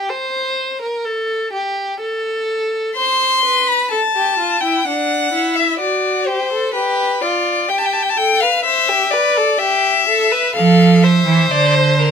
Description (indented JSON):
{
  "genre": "classical, baroque-style fugue for string quartet",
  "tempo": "63 BPM",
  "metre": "4/4",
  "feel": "straight",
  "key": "unclear",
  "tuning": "A4 = 440 Hz",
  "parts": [
    { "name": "rich violin", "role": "second line", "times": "0.0-12.1 s", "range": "D4 to C5", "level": "-19 LUFS", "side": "equal", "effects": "none" },
    { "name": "rich violin", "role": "melody", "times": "3.0-12.1 s", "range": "Bb4 to C6", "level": "-15 LUFS", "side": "left 4 dB", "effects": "none" },
    { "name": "clear cello", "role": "bass", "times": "10.6-12.1 s", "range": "D3 to F3", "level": "-12 LUFS", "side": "right 4 dB", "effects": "none" }
  ],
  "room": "moderate studio reverb, RT60 0.6 s",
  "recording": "minimal, uncompressed stereo recording",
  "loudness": "-14 LUFS",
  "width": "side -7 dB against mid",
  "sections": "0.0-12.1 A section",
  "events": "none",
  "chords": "0.0 N.C.; 3.0 C5; 4.9 D7; 6.8 G7; 8.7 C (rootless); 10.6 F"
}